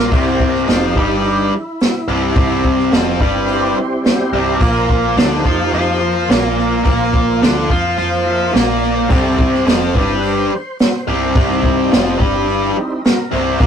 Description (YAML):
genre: blues rock power trio and southern rock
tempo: 107 BPM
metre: 4/4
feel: straight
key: C mixolydian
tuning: A4 = 439 Hz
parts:
  - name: overdriven tonewheel organ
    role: sustained chords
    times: 0.0-13.7 s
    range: F3 to E5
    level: -22 LUFS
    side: right 1 dB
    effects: chorus vibrato, slow rotary speaker
  - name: tight distorted guitar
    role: riff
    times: 0.0-13.7 s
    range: C2 to F4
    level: -15 LUFS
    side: equal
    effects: distortion
  - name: vintage muted picked electric bass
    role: bass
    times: 0.0-13.7 s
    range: C1 to F2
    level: -24 LUFS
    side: equal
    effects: none
  - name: jazz brush drum kit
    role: drums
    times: 0.1-13.7 s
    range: hi-hat, kick drum, snare drum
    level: -15 LUFS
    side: equal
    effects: none
room: wet booth ambience, RT60 0.3 s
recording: rough rehearsal-room recording, tube saturation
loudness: -13 LUFS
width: side -8 dB against mid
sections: 0.0-13.7 A section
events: tonewheel organ solo 0.0-13.7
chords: 0.1 C; 4.6 Bb5; 9.1 C